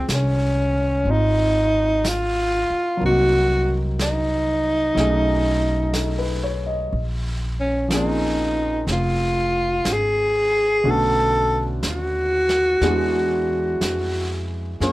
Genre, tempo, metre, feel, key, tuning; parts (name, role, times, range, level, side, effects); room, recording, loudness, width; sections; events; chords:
jazz ballad; 61 BPM; 4/4; swing 68% on 8ths; A4 = 442 Hz
breathy alto saxophone; melody; 0.0-14.9 s; Db4 to Db5; -20 LUFS; equal
warm grand piano; accompaniment; 0.0-14.9 s; D3 to Eb5; -26 LUFS; equal
upright bass; bass; 0.0-14.9 s; F1 to Gb2; -24 LUFS; equal
vintage brush drum kit; drums; 0.1-14.9 s; brushed snare drum, hi-hat, snare drum; -31 LUFS; right 1 dB
light reverb; lossy compression artefacts; -18 LUFS; side -18 dB against mid
0.0-14.9 A section
0.0 Dbmaj7; 3.0 Cm7b5; 5.0 Cb13; 6.9 Bbm7; 10.8 Cbm7; 12.8 E9